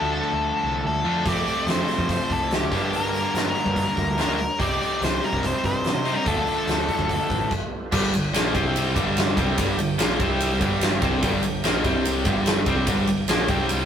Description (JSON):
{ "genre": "blues rock power trio and southern rock", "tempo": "144 BPM", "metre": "4/4", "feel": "straight", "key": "G minor", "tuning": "A4 = 439 Hz", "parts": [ { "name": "octave-fuzz lead guitar", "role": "melody", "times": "0.0-7.5 s", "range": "G4 to D5", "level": "-26 LUFS", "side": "left 2 dB", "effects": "distortion" }, { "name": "cranked stack guitar", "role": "riff", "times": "0.0-13.9 s", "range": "F2 to Eb4", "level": "-24 LUFS", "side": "equal", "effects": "overdrive" }, { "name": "growling picked electric bass", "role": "bass", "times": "0.0-13.9 s", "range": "G1 to C3", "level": "-29 LUFS", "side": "right 1 dB", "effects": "overdrive" }, { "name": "huge arena drum kit", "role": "drums", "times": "1.3-13.8 s", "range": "crash cymbal, hi-hat, kick drum, ride cymbal, snare drum", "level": "-25 LUFS", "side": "equal", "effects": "none" }, { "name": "overdriven tonewheel organ", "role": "sustained chords", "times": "7.6-13.9 s", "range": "G3 to G5", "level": "-36 LUFS", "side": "right 1 dB", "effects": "none" } ], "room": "light reverb", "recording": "rough rehearsal-room recording", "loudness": "-20 LUFS", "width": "side -8 dB against mid", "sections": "0.0-7.9 A section; 7.9-13.9 B section", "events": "stop 7.5-7.9", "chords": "0.0 Dm; 2.7 Gm; 4.6 Cm; 6.3 Dm; 7.9 Gm; 8.5 C5; 9.0 Gm; 10.2 C5; 10.6 Gm; 11.8 C5; 12.3 Gm" }